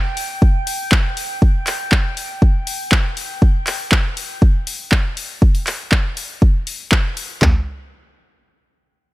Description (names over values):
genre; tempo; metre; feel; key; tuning
progressive house; 120 BPM; 4/4; straight; unclear; A4 = 438 Hz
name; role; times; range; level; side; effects
drifting glass-harmonics texture; texture; 0.0-3.4 s; G5; -29 LUFS; equal; chorus, built-in reverb, sidechain pumping
house drum kit; drums; 0.2-7.3 s; handclaps, hi-hat; -21 LUFS; equal; sidechain pumping on hats
house drum kit; drums; 0.4-7.5 s; handclaps, kick drum, toms; -14 LUFS; equal; none
room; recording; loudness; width
little or no reverb; none; -15 LUFS; side -18 dB against mid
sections
0.0-7.4 A section; 7.4-9.1 B section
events
none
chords
none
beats
0.42 0.92 | 1.42 1.92 2.42 2.92 | 3.42 3.92 4.42 4.92 | 5.42 5.92 6.42 6.92 | 7.42